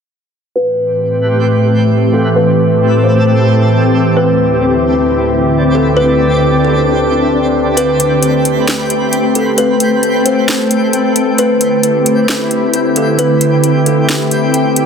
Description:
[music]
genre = hip hop, atmospheric cloud-rap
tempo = 133 BPM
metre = 4/4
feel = half-time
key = A minor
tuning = A4 = 440 Hz
[part]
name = kalimba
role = melody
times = 0.6-14.9 s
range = A4 to C5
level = -15 LUFS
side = left 1 dB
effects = low-pass filter, tape echo
[part]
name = glassy FM pad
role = sustained chords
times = 0.8-14.9 s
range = D2 to A4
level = -12 LUFS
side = equal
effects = ensemble chorus, built-in reverb, low-pass filter
[part]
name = twinkling granular texture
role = texture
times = 1.1-14.9 s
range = A3 to B5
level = -20 LUFS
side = right 2 dB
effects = built-in reverb
[part]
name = trap drum kit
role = drums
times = 7.8-14.9 s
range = hi-hat, snare drum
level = -16 LUFS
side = equal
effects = none
[sound]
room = light reverb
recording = dense, heavily limited modern master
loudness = -10 LUFS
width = side -6 dB against mid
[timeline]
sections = 0.6-7.8 A section; 7.8-14.9 B section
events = filter sweep 0.6-7.8; kick muted 7.8-14.9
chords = 0.6 Am9; 4.2 D9sus4; 7.8 Am9; 11.4 D9sus4

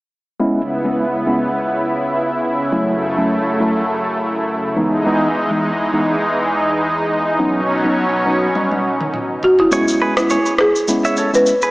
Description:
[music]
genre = afrobeats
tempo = 103 BPM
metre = 4/4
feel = swing 55% on 16ths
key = unclear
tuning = A4 = 441 Hz
[part]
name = mellow tine electric piano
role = accompaniment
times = 0.4-11.5 s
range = E3 to E4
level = -20 LUFS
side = equal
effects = medium stereo tremolo
[part]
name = lush unison pad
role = sustained chords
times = 0.4-9.7 s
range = C#2 to E4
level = -17 LUFS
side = equal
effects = chorus
[part]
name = afro-pop drum kit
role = drums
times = 8.6-11.7 s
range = rim click, shaker, toms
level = -22 LUFS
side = equal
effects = overdrive
[part]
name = folk marimba with medium mallets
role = melody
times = 9.4-11.7 s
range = E4 to B4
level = -14 LUFS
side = equal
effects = none
[part]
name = direct-recorded clean electric guitar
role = riff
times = 9.7-11.7 s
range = G#4 to E5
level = -20 LUFS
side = right 1 dB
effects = analog delay
[sound]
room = wet lush hall reverb, RT60 2.1 s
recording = dreamy mix soaked in reverb, small speaker sound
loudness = -14 LUFS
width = side -20 dB against mid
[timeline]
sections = 0.4-9.7 A section; 9.7-11.7 B section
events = drum fill 8.6-9.7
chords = 0.4 C#m7; 2.7 F#m7; 4.8 Emaj7; 7.4 Badd9; 9.7 C#m7

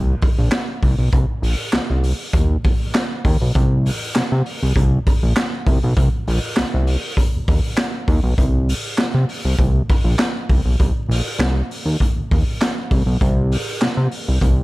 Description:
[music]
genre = funk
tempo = 99 BPM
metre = 4/4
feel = straight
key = unclear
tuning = A4 = 440 Hz
[part]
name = fat analog bass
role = bass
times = 0.0-14.6 s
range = Bb1 to C3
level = -17 LUFS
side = equal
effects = none
[part]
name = raw garage drum kit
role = drums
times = 0.2-14.6 s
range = handclaps, hi-hat, kick drum, snare drum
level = -18 LUFS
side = equal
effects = none
[sound]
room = little or no reverb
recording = dark, warm production, vinyl crackle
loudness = -16 LUFS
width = side -20 dB against mid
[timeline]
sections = 0.0-14.6 A section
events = none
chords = none

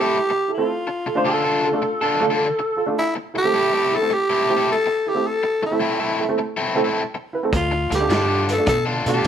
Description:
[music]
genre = electric blues shuffle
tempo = 105 BPM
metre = 4/4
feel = swing 68% on 8ths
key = A minor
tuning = A4 = 439 Hz
[part]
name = growling tenor saxophone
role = melody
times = 0.0-9.3 s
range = E4 to A4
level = -21 LUFS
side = equal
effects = none
[part]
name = overdriven semi-hollow guitar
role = riff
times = 0.0-9.3 s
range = D3 to A4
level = -24 LUFS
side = left 3 dB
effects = none
[part]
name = honky-tonk upright piano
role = accompaniment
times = 0.5-9.2 s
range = A3 to C5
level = -24 LUFS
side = right 3 dB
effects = none
[part]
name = electric guitar through a small old amp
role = second line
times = 1.3-2.8 s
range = A4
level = -22 LUFS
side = equal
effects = none
[part]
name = vintage muted fingered electric bass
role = bass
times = 7.5-9.3 s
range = D2 to B2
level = -24 LUFS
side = equal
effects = none
[part]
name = vintage drum kit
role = drums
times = 7.5-9.3 s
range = hi-hat, kick drum, snare drum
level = -25 LUFS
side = equal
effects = none
[sound]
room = moderate studio reverb, RT60 0.9 s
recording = band playing live in one room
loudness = -18 LUFS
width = side -8 dB against mid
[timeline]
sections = 0.0-9.3 A section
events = none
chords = 0.0 Am; 0.7 Dm; 3.0 Am; 7.5 Dm

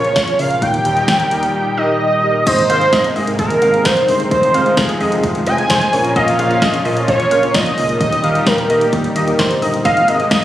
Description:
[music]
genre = synth-pop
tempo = 130 BPM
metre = 4/4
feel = straight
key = Ab major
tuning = A4 = 441 Hz
[part]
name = fat analog lead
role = melody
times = 0.0-10.4 s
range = Ab4 to Ab5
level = -15 LUFS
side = right 1 dB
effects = chorus, phaser, analog delay
[part]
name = mellow synth brass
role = accompaniment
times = 0.0-10.2 s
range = Bb3 to C5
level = -24 LUFS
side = equal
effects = chorus
[part]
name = brassy analog pad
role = sustained chords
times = 0.0-10.4 s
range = Bb2 to G4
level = -21 LUFS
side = left 1 dB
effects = chorus
[part]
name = fat analog bass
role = bass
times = 0.0-10.4 s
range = F1 to Eb3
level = -23 LUFS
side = equal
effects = none
[part]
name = house drum kit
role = drums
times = 0.0-10.4 s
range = crash cymbal, hi-hat, kick drum, snare drum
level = -20 LUFS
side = equal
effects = none
[part]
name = warbly dusty pluck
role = second line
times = 2.5-10.4 s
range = C5 to F5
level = -21 LUFS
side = left 1 dB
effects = chorus, analog delay
[sound]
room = moderate plate reverb, RT60 1.6 s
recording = recorded on a phone in the room, studio reverb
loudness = -12 LUFS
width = side -13 dB against mid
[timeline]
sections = 0.0-2.5 A section; 2.5-10.4 B section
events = silent gap 1.5-2.5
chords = 0.0 Bbm; 0.6 Eb; 2.5 Abadd9; 4.3 Fm7; 5.9 Bbm; 8.0 Eb; 9.9 Abadd9

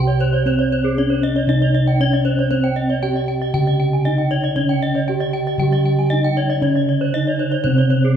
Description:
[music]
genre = Balinese gamelan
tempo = 117 BPM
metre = 4/4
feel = straight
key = C pelog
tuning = A4 = 440 Hz
[part]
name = gamelan-type bronze metallophone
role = melody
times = 0.0-8.2 s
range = C4 to G4-30c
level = -22 LUFS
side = left 1 dB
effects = none
[part]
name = gamelan-type bronze metallophone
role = arpeggios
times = 0.0-8.0 s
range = C5 to G5-30c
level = -24 LUFS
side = left 4 dB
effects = none
[part]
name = gamelan-type bossed gongs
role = bass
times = 0.0-8.2 s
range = C3 to Db4+20c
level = -18 LUFS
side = right 1 dB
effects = none
[part]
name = gamelan-type bronze metallophone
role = arpeggios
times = 0.1-8.2 s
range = Ab4-20c to Ab5-20c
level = -26 LUFS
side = right 4 dB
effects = none
[part]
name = gamelan-type bronze metallophone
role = accompaniment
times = 4.6-8.2 s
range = C3 to G3-30c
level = -24 LUFS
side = right 4 dB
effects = none
[sound]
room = wet recital hall reverb, RT60 1.4 s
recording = recorded in a church or concert hall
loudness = -16 LUFS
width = side -8 dB against mid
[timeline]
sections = 0.0-8.2 A section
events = none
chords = none

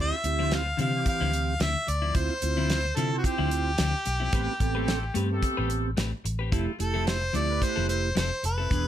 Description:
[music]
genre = straight-eighth soul blues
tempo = 110 BPM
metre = 4/4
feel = swing 55% on 16ths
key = unclear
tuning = A4 = 440 Hz
[part]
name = clear harmonica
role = melody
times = 0.0-8.9 s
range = F#4 to F5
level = -29 LUFS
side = left 1 dB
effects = overdrive
[part]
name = mellow tonewheel organ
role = accompaniment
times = 0.0-8.9 s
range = E3 to A4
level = -32 LUFS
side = right 7 dB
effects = slow rotary speaker
[part]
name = clear horn section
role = sustained chords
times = 0.0-8.9 s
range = E3 to C5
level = -38 LUFS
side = left 2 dB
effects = none
[part]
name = vintage muted fingered electric bass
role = bass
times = 0.0-8.8 s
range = E1 to C3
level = -29 LUFS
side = equal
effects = none
[part]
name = clean electric guitar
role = stabs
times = 0.1-8.9 s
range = D3 to B4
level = -33 LUFS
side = left 6 dB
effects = none
[part]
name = damped 70s drum kit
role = drums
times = 0.2-8.8 s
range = hi-hat, kick drum, snare drum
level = -29 LUFS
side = equal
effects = none
[sound]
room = little or no reverb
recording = none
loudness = -24 LUFS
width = side -11 dB against mid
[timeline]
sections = 0.0-8.9 A section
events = none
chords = 0.0 Dm9; 4.3 Am9; 6.5 Fmaj7

